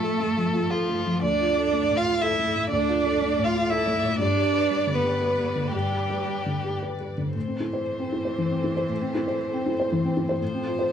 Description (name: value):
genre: neoclassical piano and strings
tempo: 119 BPM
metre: 3/4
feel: rubato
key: A minor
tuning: A4 = 439 Hz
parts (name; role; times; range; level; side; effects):
- warm violin; melody; 0.0-10.9 s; F4 to F5; -27 LUFS; left 1 dB; none
- rich cello; second line; 0.0-10.9 s; E3 to F4; -29 LUFS; right 7 dB; none
- felt-muted upright piano; accompaniment; 0.0-10.9 s; D2 to C5; -26 LUFS; left 1 dB; none
- rich chamber string section; sustained chords; 0.0-10.9 s; E3 to E5; -37 LUFS; left 2 dB; none
room: moderate studio ambience, RT60 0.5 s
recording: band playing live in one room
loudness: -22 LUFS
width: side -8 dB against mid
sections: 0.0-7.4 A section; 7.4-10.9 B section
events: none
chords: 0.0 F/A; 1.2 Dm; 4.2 G; 7.4 Am; 10.4 F/A